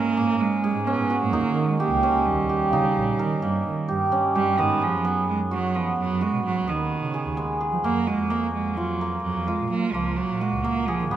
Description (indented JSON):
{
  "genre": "contemporary instrumental, chamber music in an uneven meter",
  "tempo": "129 BPM",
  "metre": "7/4",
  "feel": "straight",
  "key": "G# dorian",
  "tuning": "A4 = 437 Hz",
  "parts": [
    { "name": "clear cello", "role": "melody", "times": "0.0-11.2 s", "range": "D#3 to B3", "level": "-26 LUFS", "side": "right 5 dB", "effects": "none" },
    { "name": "hammered dulcimer", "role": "arpeggios", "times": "0.0-11.2 s", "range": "G#3 to A#4", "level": "-24 LUFS", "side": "right 1 dB", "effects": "none" },
    { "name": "dark double bass", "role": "bass", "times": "0.0-11.2 s", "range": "A#1 to G#3", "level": "-28 LUFS", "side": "right 3 dB", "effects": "none" },
    { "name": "large celesta", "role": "texture", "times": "2.7-3.2 s", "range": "E#5", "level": "-34 LUFS", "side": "left 7 dB", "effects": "none" }
  ],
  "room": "light reverb",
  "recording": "close, detailed microphones",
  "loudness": "-21 LUFS",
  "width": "side -11 dB against mid",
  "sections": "0.0-4.6 A section; 4.6-11.2 B section",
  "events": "none",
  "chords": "0.0 A#m7; 1.3 D#; 4.6 G#m7; 7.8 F#maj7"
}